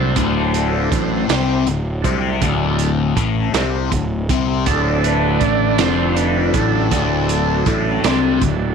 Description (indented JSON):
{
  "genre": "psychedelic rock",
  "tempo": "53 BPM (dotted quarters)",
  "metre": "6/8",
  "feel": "straight",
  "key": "D mixolydian",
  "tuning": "A4 = 438 Hz",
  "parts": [
    { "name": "combo organ", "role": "sustained chords", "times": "0.0-8.7 s", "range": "D3 to D5", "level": "-21 LUFS", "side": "right 13 dB", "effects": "none" },
    { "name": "fuzz guitar", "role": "riff", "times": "0.0-8.7 s", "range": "D2 to C4", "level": "-19 LUFS", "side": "left 9 dB", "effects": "distortion, phaser" },
    { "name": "fuzz fingered electric bass", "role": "bass", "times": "0.0-8.7 s", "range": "D1 to C2", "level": "-21 LUFS", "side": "right 1 dB", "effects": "overdrive" },
    { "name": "crunchy breakbeat drum kit", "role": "drums", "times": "0.2-8.6 s", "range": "hi-hat, kick drum, snare drum", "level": "-23 LUFS", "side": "right 5 dB", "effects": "none" }
  ],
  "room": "light reverb, small room ambience",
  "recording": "1960s-style stereo with parts hard left and right",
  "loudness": "-15 LUFS",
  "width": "side -6 dB against mid",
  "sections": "0.0-8.7 A section",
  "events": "transistor combo organ solo 0.0-8.7",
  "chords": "0.0 D",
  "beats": "| 0.17 1.29 | 2.42 3.54 | 4.67 5.80 | 6.92 8.05"
}